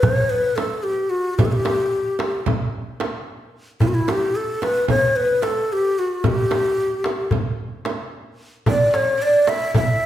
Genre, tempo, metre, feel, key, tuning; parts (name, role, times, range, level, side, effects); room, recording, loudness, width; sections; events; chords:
Turkish makam ensemble; 222 BPM (eighths); 9/8; straight; E makam huseyni; A4 = 438 Hz
breathy ney; melody; 0.0-10.1 s; E4 to E5; -19 LUFS; left 1 dB
darbuka; percussion; 0.0-9.9 s; -23 LUFS; left 1 dB
frame drum; percussion; 0.0-9.9 s; -26 LUFS; right 4 dB
oud; second line; 8.7-10.1 s; C#4-30c to E4; -24 LUFS; left 1 dB
wet recital hall reverb, RT60 1.3 s; recorded in a church or concert hall; -18 LUFS; side -12 dB against mid
0.0-10.1 A section